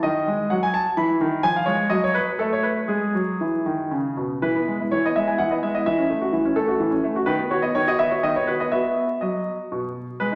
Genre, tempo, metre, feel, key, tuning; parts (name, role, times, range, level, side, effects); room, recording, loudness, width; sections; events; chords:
classical-period piano sonatina; 116-130 BPM; 3/4; rubato; E major; A4 = 440 Hz
bright concert grand piano; solo; 0.0-10.3 s; B2 to B5; -22 LUFS; equal
wet recital hall reverb, RT60 1.4 s; vinyl crackle; -23 LUFS; mono
0.0-4.4 A section; 4.4-10.3 A section
0.0 D#madd11; 1.0 E5; 1.4 C#/E#; 1.9 N.C.; 2.9 E; 5.9 F#m7/E; 7.3 B/D#; 8.7 B